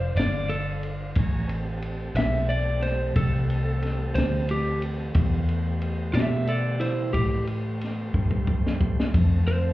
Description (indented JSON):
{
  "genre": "slow blues",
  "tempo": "60 BPM (dotted quarters)",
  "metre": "12/8",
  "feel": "straight",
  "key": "A minor",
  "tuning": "A4 = 439 Hz",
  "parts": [
    { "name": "lightly driven lead guitar", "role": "melody", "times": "0.0-9.7 s", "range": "E4 to E5", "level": "-28 LUFS", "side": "equal", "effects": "none" },
    { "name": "tonewheel organ", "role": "sustained chords", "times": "0.0-9.7 s", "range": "A3 to Bb5", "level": "-38 LUFS", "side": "right 2 dB", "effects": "chorus vibrato" },
    { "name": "vintage muted fingered electric bass", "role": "bass", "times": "0.0-9.7 s", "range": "F1 to B2", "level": "-25 LUFS", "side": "equal", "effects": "none" },
    { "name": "compact cocktail drum kit", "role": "drums", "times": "0.2-9.6 s", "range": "kick drum, ride cymbal, snare drum", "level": "-29 LUFS", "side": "equal", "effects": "none" },
    { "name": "mellow French horn section", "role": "sustained chords", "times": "1.2-9.7 s", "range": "C3 to A3", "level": "-36 LUFS", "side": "left 2 dB", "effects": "none" }
  ],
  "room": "light reverb",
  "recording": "heard muffled through a wall, club reverb, EQ",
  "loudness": "-23 LUFS",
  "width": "side -16 dB against mid",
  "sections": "0.0-9.7 A section",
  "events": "lead electric guitar solo 0.0-9.7; drum fill 8.1-9.1",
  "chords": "0.0 Dm7; 1.2 Am7; 9.1 Fmaj7"
}